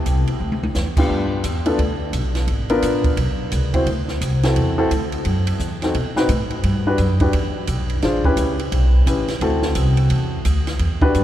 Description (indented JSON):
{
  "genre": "jazz, small-group swing and bop",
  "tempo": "173 BPM",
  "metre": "4/4",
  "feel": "swing 63% on 8ths",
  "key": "D mixolydian",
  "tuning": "A4 = 441 Hz",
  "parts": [
    { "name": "upright bass", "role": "bass", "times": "0.1-11.2 s", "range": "G#1 to B2", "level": "-20 LUFS", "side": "equal", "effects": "none" },
    { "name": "compact cocktail drum kit", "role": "drums", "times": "0.1-11.2 s", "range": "crash cymbal, hi-hat, kick drum, ride cymbal, snare drum, toms", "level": "-25 LUFS", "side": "right 2 dB", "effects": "none" },
    { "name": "warm upright piano", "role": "accompaniment", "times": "1.0-11.2 s", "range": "B3 to C5", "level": "-22 LUFS", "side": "left 2 dB", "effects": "none" }
  ],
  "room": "wet cathedral reverb, RT60 5.1 s",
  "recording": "recorded in a church or concert hall",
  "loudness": "-17 LUFS",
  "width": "side -12 dB against mid",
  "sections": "0.0-11.2 A section",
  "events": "drum fill 0.4-0.7",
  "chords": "0.4 Dsus2; 1.1 G7; 2.5 G#dim7; 3.9 D9; 5.2 F#m7b5; 5.9 B7b9; 6.6 Em7; 8.0 A9; 9.4 D9"
}